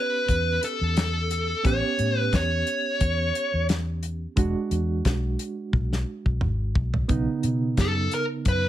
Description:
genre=straight-eighth soul blues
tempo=88 BPM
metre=4/4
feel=swing 55% on 16ths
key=unclear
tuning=A4 = 441 Hz
part: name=dark smooth lead guitar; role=melody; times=0.0-3.7, 7.8-8.7 s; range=A4 to C#5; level=-25 LUFS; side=equal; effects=overdrive
part: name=bright reed electric piano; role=accompaniment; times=0.0-8.7 s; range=C#3 to G4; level=-30 LUFS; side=right 5 dB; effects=fast tremolo
part: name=vintage muted fingered electric bass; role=bass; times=0.3-8.7 s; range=E1 to B2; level=-26 LUFS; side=left 1 dB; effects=none
part: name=damped 70s drum kit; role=drums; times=0.3-8.6 s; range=hi-hat, kick drum, snare drum, toms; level=-25 LUFS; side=left 1 dB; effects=none
room=light reverb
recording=none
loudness=-22 LUFS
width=side -12 dB against mid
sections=0.0-8.7 A section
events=drum fill 5.7-7.1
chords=0.0 A7; 4.4 E7; 7.1 B7

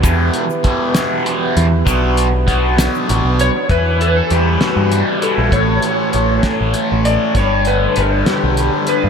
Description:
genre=psychedelic rock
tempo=66 BPM (dotted quarters)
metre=6/8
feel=straight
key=E dorian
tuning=A4 = 444 Hz
part: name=mellow tonewheel organ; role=sustained chords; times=0.0-3.7 s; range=B3 to B4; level=-24 LUFS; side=right 4 dB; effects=chorus vibrato, slow rotary speaker
part: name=fuzz guitar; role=riff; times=0.0-9.1 s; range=E2 to E4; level=-17 LUFS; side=left 1 dB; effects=distortion, phaser
part: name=deep dub picked electric bass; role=bass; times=0.0-9.1 s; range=G1 to G2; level=-16 LUFS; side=equal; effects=none
part: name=cloth-damped thuddy drum kit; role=drums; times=0.0-9.0 s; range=hi-hat, kick drum, snare drum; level=-22 LUFS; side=equal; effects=none
part: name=egg shaker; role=percussion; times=0.0-3.0 s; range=none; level=-29 LUFS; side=left 20 dB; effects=none
part: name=electric slide guitar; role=melody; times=3.4-9.1 s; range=F#4 to D5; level=-18 LUFS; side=left 2 dB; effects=analog chorus, analog delay
room=moderate huge ambient reverb, RT60 8.8 s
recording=dreamy mix soaked in reverb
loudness=-13 LUFS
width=side -6 dB against mid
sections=0.0-3.7 A section; 3.7-9.1 B section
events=none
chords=0.1 Em; 1.9 Bm; 3.7 Em; 5.5 A; 7.4 G

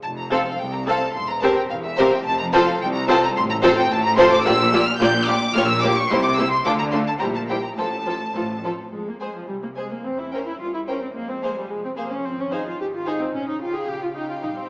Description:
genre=quick classical-period movement for string orchestra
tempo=109 BPM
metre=2/4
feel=straight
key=F major, F minor from 8.9 s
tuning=A4 = 440 Hz
part: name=rich studio violin section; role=melody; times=0.0-14.7 s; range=E5 to G6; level=-23 LUFS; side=equal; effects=none
part: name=rich studio cello section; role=bass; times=0.0-14.7 s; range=C2 to Ab3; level=-29 LUFS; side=equal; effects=none
part: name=rich studio double bass section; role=bass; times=0.0-14.7 s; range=E1 to F2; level=-32 LUFS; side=equal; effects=none
part: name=rich studio violin section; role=second line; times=0.3-14.7 s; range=F4 to F5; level=-24 LUFS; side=equal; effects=none
part: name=rich studio viola section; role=accompaniment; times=0.3-14.7 s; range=F3 to A4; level=-22 LUFS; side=equal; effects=none
room=wet recital hall reverb, RT60 1.4 s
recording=small speaker sound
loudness=-18 LUFS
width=side -29 dB against mid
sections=0.0-8.9 A section; 8.9-14.7 A section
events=none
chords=0.0 F; 1.2 C7/E; 2.3 F; 3.4 F/A; 4.4 Gm7/Bb; 6.1 C7; 6.6 Dm; 7.2 C7/Bb (rootless); 7.8 F/A; 8.9 Fm; 10.0 C7/E; 11.1 Fm; 12.2 Fm/Ab; 13.3 Gm7b5/Bb

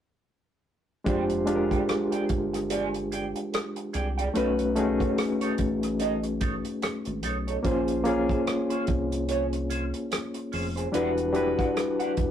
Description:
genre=lush 1970s-style soul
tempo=73 BPM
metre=4/4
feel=swing 58% on 16ths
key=unclear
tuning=A4 = 440 Hz
part: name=barky reed electric piano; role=accompaniment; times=1.0-12.3 s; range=G3 to Db5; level=-26 LUFS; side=left 1 dB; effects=overdrive, fast tremolo
part: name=electric guitar through a small old amp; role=riff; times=1.1-12.2 s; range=Db4 to Ab5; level=-33 LUFS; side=right 4 dB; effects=wah
part: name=fingered electric bass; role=bass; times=1.1-12.3 s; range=E1 to C2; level=-34 LUFS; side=equal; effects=none
part: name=warm soul drum kit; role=drums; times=1.1-12.3 s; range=hi-hat, kick drum, rim click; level=-31 LUFS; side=right 1 dB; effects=none
room=light reverb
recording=rough rehearsal-room recording, tube saturation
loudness=-25 LUFS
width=side -9 dB against mid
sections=1.1-12.3 A section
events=none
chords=1.1 Fm69; 4.4 B9; 7.6 Bbm9; 10.9 Em9

